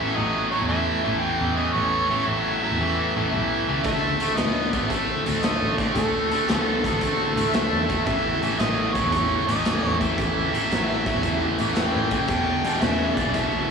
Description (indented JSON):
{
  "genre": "blues rock power trio and southern rock",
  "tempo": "114 BPM",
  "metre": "4/4",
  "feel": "swing 68% on 8ths",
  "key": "A mixolydian",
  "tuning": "A4 = 440 Hz",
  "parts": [
    { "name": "warm harmonica", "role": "melody", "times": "0.0-13.7 s", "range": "A4 to G5", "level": "-27 LUFS", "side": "right 1 dB", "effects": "overdrive, slapback echo" },
    { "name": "overdriven tonewheel organ", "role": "sustained chords", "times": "0.0-13.7 s", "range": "A3 to A4", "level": "-32 LUFS", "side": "right 1 dB", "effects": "slow rotary speaker" },
    { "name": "tight distorted guitar", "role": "riff", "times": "0.0-13.7 s", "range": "E2 to B3", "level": "-24 LUFS", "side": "equal", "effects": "distortion, slapback echo" },
    { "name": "vintage muted picked electric bass", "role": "bass", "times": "0.2-13.7 s", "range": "E1 to E2", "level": "-29 LUFS", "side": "equal", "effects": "none" },
    { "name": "raw garage drum kit", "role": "drums", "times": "3.8-13.5 s", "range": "hi-hat, kick drum, snare drum", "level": "-27 LUFS", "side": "equal", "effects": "none" }
  ],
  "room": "moderate club reverb, RT60 0.7 s",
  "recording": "live gig heard through the venue's PA, recital hall reverb, small room ambience",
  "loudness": "-20 LUFS",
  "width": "side -6 dB against mid",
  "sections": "0.0-13.7 A section",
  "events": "none",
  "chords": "0.0 A7; 3.9 D7; 8.1 A7; 12.3 E7",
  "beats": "0.17 0.69 1.22 | 1.75 2.27 2.80 3.33 | 3.85 4.38 4.91 5.43 | 5.96 6.49 7.01 7.54 | 8.07 8.59 9.12 9.65 | 10.18 10.71 11.23 11.76 | 12.29 12.82 13.35"
}